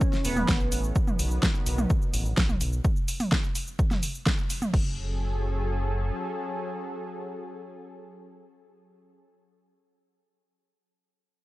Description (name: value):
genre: melodic techno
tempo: 127 BPM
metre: 4/4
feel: straight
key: F# dorian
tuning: A4 = 435 Hz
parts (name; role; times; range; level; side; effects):
- resonant sweep polysynth; melody; 0.0-0.9 s; B3 to C#4; -32 LUFS; right 1 dB; chorus, sidechain pumping, analog delay
- lush unison pad; sustained chords; 0.0-9.3 s; D#3 to A4; -36 LUFS; left 1 dB; chorus, sidechain pumping
- deep house drum kit; drums; 0.0-4.8 s; crash cymbal, hi-hat, shaker, snare drum, toms; -29 LUFS; equal; overdrive
- electronic kick drum; drums; 0.0-4.8 s; none; -26 LUFS; equal; overdrive
- round analog bass; bass; 0.2-6.1 s; E1 to B1; -29 LUFS; equal; sidechain pumping
room: digital ambience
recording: dry, gritty hardware recording, cassette tape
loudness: -25 LUFS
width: side -18 dB against mid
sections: 0.0-4.7 A section; 4.7-8.5 B section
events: drop 0.0-4.7; band accent 4.3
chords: 0.0 A; 1.0 B; 4.7 F#madd9